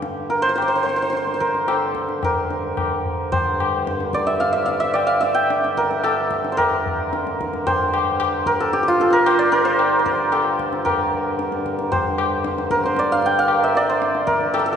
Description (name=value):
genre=indian classical, Hindustani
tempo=112 BPM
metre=4/4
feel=straight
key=G raga bhimpalasi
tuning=A4 = 440 Hz
part: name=santur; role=melody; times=0.0-14.8 s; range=F4 to G5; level=-19 LUFS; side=right 1 dB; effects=none
part: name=pedal harmonium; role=drone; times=0.0-14.8 s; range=G2 to D3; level=-28 LUFS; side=equal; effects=none
part: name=tabla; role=percussion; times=0.0-14.7 s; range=none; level=-25 LUFS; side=left 4 dB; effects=none
room=wet church reverb, RT60 3.2 s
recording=recorded in a church or concert hall, nothing above 10.5 kHz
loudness=-17 LUFS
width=side -8 dB against mid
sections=0.0-3.3 A section; 3.3-14.8 B section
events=speeding up 0.0-14.8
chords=none